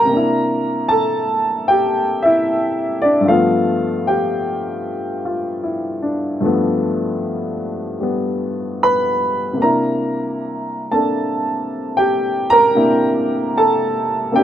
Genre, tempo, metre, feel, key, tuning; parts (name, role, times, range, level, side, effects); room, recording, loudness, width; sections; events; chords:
solo jazz; 76 BPM; 4/4; swing 68% on 8ths; A4 = 440 Hz
warm upright piano; solo; 0.0-14.4 s; G2 to B5; -16 LUFS; equal
light reverb; rough home demo mix; -16 LUFS; side -10 dB against mid
0.0-14.4 A section
0.1 C9; 3.3 G9; 9.6 C9